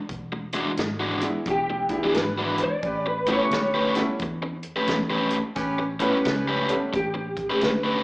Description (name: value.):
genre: electric blues shuffle.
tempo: 88 BPM.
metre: 4/4.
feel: swing 63% on 8ths.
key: unclear.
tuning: A4 = 442 Hz.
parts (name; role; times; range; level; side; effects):
vintage muted fingered electric bass; bass; 0.1-8.0 s; E1 to E2; -32 LUFS; equal; none.
warm soul drum kit; drums; 0.1-7.8 s; hi-hat, kick drum, snare drum; -30 LUFS; equal; slapback echo.
overdriven electric guitar; riff; 0.3-8.0 s; E3 to B4; -26 LUFS; equal; slapback echo.
bright grand piano; accompaniment; 1.2-6.9 s; E3 to G4; -29 LUFS; equal; slapback echo.
electric guitar through a small old amp; melody; 1.5-8.0 s; G4 to D5; -25 LUFS; equal; ensemble chorus.
dark horn section; stabs; 2.8-6.8 s; C#4 to B4; -29 LUFS; equal; slapback echo, digital delay.
room: light reverb, small room ambience.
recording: live gig heard through the venue's PA, club reverb, small speaker sound.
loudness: -22 LUFS.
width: side -24 dB against mid.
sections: 0.0-8.0 A section.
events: clean electric guitar solo 0.0-8.0.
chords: 0.0 E9; 2.8 A9.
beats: | 0.09 0.78 1.46 2.15 | 2.83 3.52 4.20 4.88 | 5.57 6.25 6.94 7.62.